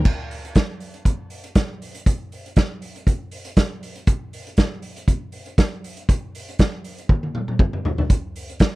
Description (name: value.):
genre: disco.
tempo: 119 BPM.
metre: 4/4.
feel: straight.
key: none.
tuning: none.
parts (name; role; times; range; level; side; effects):
vintage drum kit; drums; 0.1-8.7 s; crash cymbal, hi-hat, kick drum, snare drum, toms; -19 LUFS; equal; none.
room: little or no reverb.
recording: none.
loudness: -20 LUFS.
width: side -20 dB against mid.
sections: 0.1-8.8 A section.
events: drum fill 7.1-8.1.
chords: none.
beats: | 0.05 0.55 1.06 1.56 | 2.06 2.57 3.07 3.57 | 4.08 4.58 5.08 5.58 | 6.09 6.59 7.09 7.59 | 8.10 8.60.